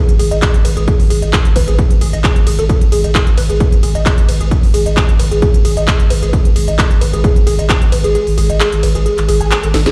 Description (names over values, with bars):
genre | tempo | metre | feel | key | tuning
driving peak-time techno | 132 BPM | 4/4 | straight | G# phrygian | A4 = 440 Hz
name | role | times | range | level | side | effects
woody wave-folded pluck | riff | 0.0-9.9 s | G#4 to G#5 | -21 LUFS | equal | ensemble chorus, sidechain pumping, delay
saturated sub bass | bass | 0.1-9.9 s | G#1 | -18 LUFS | equal | overdrive, sidechain pumping, low-pass filter
techno drum kit | drums | 0.1-9.9 s | handclaps, hi-hat, ride cymbal, snare drum | -23 LUFS | equal | sidechain pumping on hats, sidechain pumping on cymbals
electronic kick drum | drums | 0.4-7.8 s | none | -14 LUFS | equal | none
room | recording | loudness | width
light reverb | played on a big sound system in a bare room, stone room reverb | -13 LUFS | mono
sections
0.0-9.9 A section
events
kick drops out 8.1-9.9; drum fill 9.7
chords
0.0 G#m